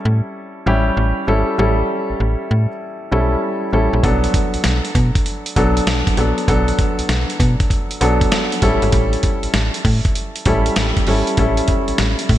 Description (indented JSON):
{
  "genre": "R&B, new jack swing",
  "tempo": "98 BPM",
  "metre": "4/4",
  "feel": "swing 66% on 16ths",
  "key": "unclear",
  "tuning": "A4 = 439 Hz",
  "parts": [
    { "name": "warm grand piano", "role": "accompaniment", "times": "0.0-12.4 s", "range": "F#3 to A4", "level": "-19 LUFS", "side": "equal", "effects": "none" },
    { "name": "slap-like FM bass", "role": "bass", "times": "0.1-12.4 s", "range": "G#1 to B2", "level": "-17 LUFS", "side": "equal", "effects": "none" },
    { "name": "dusty soul sampler-style drum kit", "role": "drums", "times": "4.0-12.4 s", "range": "hi-hat, kick drum, snare drum", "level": "-18 LUFS", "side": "equal", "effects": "gated reverb" }
  ],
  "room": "light reverb, digital ambience",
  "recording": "bright 1980s-style digital production",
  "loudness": "-15 LUFS",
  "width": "side -13 dB against mid",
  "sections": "0.0-12.4 A section",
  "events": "none",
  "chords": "0.0 A7; 4.0 Bm7; 8.6 A7",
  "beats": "0.36 0.97 | 1.58 2.20 2.81 3.42 | 4.03 4.64 5.26 5.87 | 6.48 7.09 7.71 8.32 | 8.93 9.54 10.15 10.77 | 11.38 11.99"
}